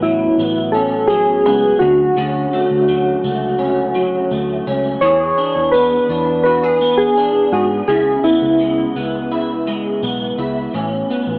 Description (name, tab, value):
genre	indie pop, bedroom pop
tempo	84 BPM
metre	4/4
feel	straight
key	A major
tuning	A4 = 436 Hz
part	soft electric-piano-like synth keys	melody	0.0-8.9 s	E4 to C#5	-17 LUFS	equal	tremolo, analog chorus, analog delay
part	electric guitar through a small old amp	accompaniment	0.0-11.4 s	A2 to G#4	-22 LUFS	equal	ensemble chorus, warbly pitch drift, cassette tape
part	vintage muted fingered electric bass	bass	0.0-11.4 s	A1 to G#2	-28 LUFS	equal	none
room	light reverb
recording	home recording on cassette, AM radio sound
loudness	-16 LUFS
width	mono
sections	0.0-11.4 A section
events	none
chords	0.0 A69; 1.8 Dmaj7; 5.0 E7; 7.9 C#m7; 10.7 Aadd9